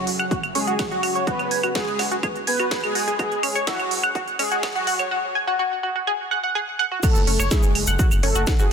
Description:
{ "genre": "melodic techno", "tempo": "125 BPM", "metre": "4/4", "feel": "straight", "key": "unclear", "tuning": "A4 = 440 Hz", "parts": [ { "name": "expressive synth lead", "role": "melody", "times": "0.0-8.7 s", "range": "F#4 to B4", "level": "-27 LUFS", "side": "equal", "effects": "ensemble chorus, sidechain pumping, ping-pong delay" }, { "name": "soft supersaw", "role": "second line", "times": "0.0-8.7 s", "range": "F#3 to B3", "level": "-32 LUFS", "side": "right 1 dB", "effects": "analog chorus, sidechain pumping, digital delay" }, { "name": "round analog bass", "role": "bass", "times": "0.0-8.7 s", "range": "E1 to E2", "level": "-27 LUFS", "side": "equal", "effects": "tube saturation, sidechain pumping, high-pass filter" }, { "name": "bowed-like drone", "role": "drone", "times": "0.0-8.7 s", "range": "F#2 to C#3", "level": "-41 LUFS", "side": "equal", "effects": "none" }, { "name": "techno drum kit", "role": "drums", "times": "0.1-8.7 s", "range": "claves, crash cymbal, hi-hat, snare drum", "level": "-26 LUFS", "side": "right 3 dB", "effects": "sidechain pumping on perc, high-pass filter on perc, sidechain pumping on hats, high-pass filter on hats, high-pass filter on snare, sidechain pumping on cymbals, high-pass filter on cymbals, high-pass filter on room" }, { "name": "tight sequenced synth", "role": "arpeggios", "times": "0.2-8.7 s", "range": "C#4 to G#5", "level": "-24 LUFS", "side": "equal", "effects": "chorus, phaser, sidechain pumping, digital delay" }, { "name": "electronic kick drum", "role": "drums", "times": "0.3-8.6 s", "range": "none", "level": "-22 LUFS", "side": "equal", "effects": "none" }, { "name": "tube shaker", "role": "percussion", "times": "7.0-8.7 s", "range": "none", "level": "-31 LUFS", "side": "equal", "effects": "none" } ], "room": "moderate lush hall reverb, RT60 2.4 s", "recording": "dense, heavily limited modern master, high-pass filter", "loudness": "-19 LUFS", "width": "side -7 dB against mid", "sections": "0.0-7.0 A section; 7.0-8.7 B section", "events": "build-up 0.0-7.0; drop 7.0-8.7", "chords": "0.0 E; 7.0 F#madd9", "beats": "0.31 0.79 | 1.27 1.75 2.23 2.71 | 3.19 3.67 4.15 4.63 | 5.11 5.59 6.07 6.55 | 7.03 7.51 7.99 8.47" }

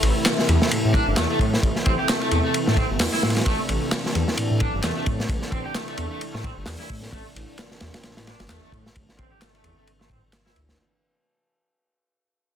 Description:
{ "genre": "breakbeat, breaks", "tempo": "131 BPM", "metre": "4/4", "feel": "swing 57% on 16ths", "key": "A minor", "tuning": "A4 = 438 Hz", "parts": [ { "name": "lush unison pad", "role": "sustained chords", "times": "0.0-10.8 s", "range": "C3 to E4", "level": "-28 LUFS", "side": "equal", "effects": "chorus, vintage 12-bit sampler grit, sidechain pumping" }, { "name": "phased detuned saw bass", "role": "bass", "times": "0.0-10.7 s", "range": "G1 to A2", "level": "-25 LUFS", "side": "equal", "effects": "phaser" }, { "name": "crunchy breakbeat drum kit", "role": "drums", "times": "0.0-10.8 s", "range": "hi-hat, kick drum, ride cymbal, snare drum", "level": "-24 LUFS", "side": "equal", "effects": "none" }, { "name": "electronic handclaps", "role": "drums", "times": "0.3-10.4 s", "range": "none", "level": "-30 LUFS", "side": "equal", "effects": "overdrive" }, { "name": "raw garage guitar", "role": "riff", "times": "0.9-10.5 s", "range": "A3 to G4", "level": "-29 LUFS", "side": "equal", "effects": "overdrive, spring reverb, low-pass filter, ping-pong delay" } ], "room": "light reverb", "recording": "dense, heavily limited modern master, faint mains hum", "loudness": "-20 LUFS", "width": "side -9 dB against mid", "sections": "0.0-10.8 A section", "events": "fade-out 0.0-10.8; filter sweep on detuned saw bass 0.0-10.8", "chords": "0.0 Am", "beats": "0.25 0.71 1.17 | 1.63 2.08 2.54 3.00 | 3.46 3.92 4.38 4.83 | 5.29 5.75 6.21 6.67 | 7.12 7.58 8.04 8.50 | 8.96 9.41 9.87 10.33" }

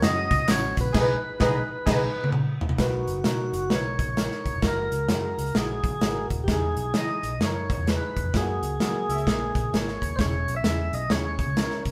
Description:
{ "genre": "uptempo 1960s-style soul", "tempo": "130 BPM", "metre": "4/4", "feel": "swing 63% on 8ths", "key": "B major", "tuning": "A4 = 440 Hz", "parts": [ { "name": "tonewheel organ", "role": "melody", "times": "0.0-11.8 s", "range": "F#4 to E5", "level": "-31 LUFS", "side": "equal", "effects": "overdrive, slow rotary speaker" }, { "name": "warm upright piano", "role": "accompaniment", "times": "0.0-11.9 s", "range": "A3 to C#5", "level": "-34 LUFS", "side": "equal", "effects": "none" }, { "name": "vintage muted fingered electric bass", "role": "bass", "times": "0.0-11.9 s", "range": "D#1 to F#3", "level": "-33 LUFS", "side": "equal", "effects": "none" }, { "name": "natural country drum kit", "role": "drums", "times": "0.0-11.9 s", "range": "crash cymbal, hi-hat, kick drum, snare drum, toms", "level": "-28 LUFS", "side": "equal", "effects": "none" }, { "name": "congas", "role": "percussion", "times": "0.0-0.9 s", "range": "none", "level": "barely audible", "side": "none", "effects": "none" }, { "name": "tambourine and handclaps", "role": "percussion", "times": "0.0-0.9 s", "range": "none", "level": "-41 LUFS", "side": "equal", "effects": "none" }, { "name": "mellow horn section", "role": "second line", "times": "0.9-2.0, 9.1-9.4 s", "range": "B3 to E5", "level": "-37 LUFS", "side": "equal", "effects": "none" } ], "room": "moderate stone room reverb, RT60 1.2 s", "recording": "band playing live in one room", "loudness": "-25 LUFS", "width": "mono", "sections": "0.0-2.8 A section; 2.8-11.9 B section", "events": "band accent 0.9-2.8, 8.3-10.2; drum fill 1.9-2.8", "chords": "0.0 F#; 0.9 B6; 2.8 Bmaj7; 4.6 F#7; 6.5 Emaj7; 8.3 F#7; 10.2 E6", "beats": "0.03 0.48 | 0.95 1.41 1.87 2.33 | 2.79 3.25 3.71 4.17 | 4.64 5.10 5.56 6.02 | 6.49 6.95 7.41 7.87 | 8.34 8.80 9.26 9.72 | 10.18 10.65 11.11 11.57" }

